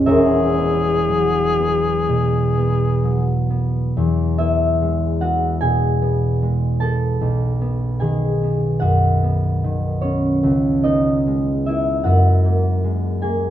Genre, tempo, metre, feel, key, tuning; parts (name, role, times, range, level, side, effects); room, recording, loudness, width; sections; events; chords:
classical, impressionist duo for alto saxophone and harp; 58-78 BPM; 4/4; rubato; E major; A4 = 437 Hz
concert harp; accompaniment; 0.0-13.5 s; E1 to A5; -16 LUFS; equal
warm alto saxophone; melody; 0.1-3.4 s; G#4; -20 LUFS; left 1 dB
moderate studio reverb, RT60 0.8 s; -16 LUFS; side -11 dB against mid
0.0-3.9 A section; 3.9-13.5 B section
0.1 Eadd9; 3.9 E; 7.2 B9; 10.4 C#m9; 12.1 F#9